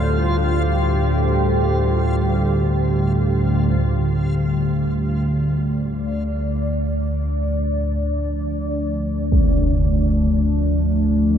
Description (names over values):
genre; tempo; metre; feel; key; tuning
dark ambient drone; free time; none; none; D minor; A4 = 436 Hz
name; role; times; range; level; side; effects
deep dark ambient pad; sustained chords; 0.0-11.4 s; D3 to D5; -22 LUFS; equal; chorus, built-in reverb
dark detuned synth bell; arpeggios; 0.0-4.5 s; A4; -36 LUFS; left 5 dB; none
analog drone; drone; 0.0-11.4 s; D2 to A2; -20 LUFS; equal; chorus
backwards swelling texture; texture; 0.0-3.8 s; F4; -30 LUFS; right 1 dB; built-in reverb
impact; percussion; 9.3-9.5 s; none; -21 LUFS; equal; low-pass filter on sfx
room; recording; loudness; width
wet huge ambient reverb, RT60 8.2 s; in a vast, echoing space; -17 LUFS; side -8 dB against mid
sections
0.0-3.8 A section; 3.8-11.4 B section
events
none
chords
0.0 Csus4/D; 3.8 Dm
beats
free time